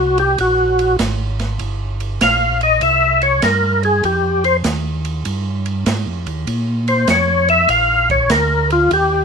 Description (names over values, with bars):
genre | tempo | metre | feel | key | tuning
soul jazz organ trio | 98 BPM | 4/4 | swing 67% on 8ths | unclear | A4 = 440 Hz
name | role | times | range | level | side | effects
overdriven tonewheel organ | melody | 0.0-9.2 s | F4 to F5 | -13 LUFS | left 1 dB | slow rotary speaker, chorus vibrato
mellow tonewheel organ | bass | 0.0-9.2 s | G1 to Bb2 | -20 LUFS | right 1 dB | chorus vibrato, slow rotary speaker
open jazz drum kit | drums | 0.2-9.1 s | hi-hat, kick drum, ride cymbal, snare drum | -24 LUFS | right 4 dB | none
room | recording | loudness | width
light reverb | minimal, uncompressed stereo recording | -14 LUFS | side -6 dB against mid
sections
0.0-9.2 A section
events
tonewheel organ solo 0.0-9.2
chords
0.0 Ebm (rootless); 1.6 Gm7; 2.8 C5; 4.0 Fm7; 6.5 Bb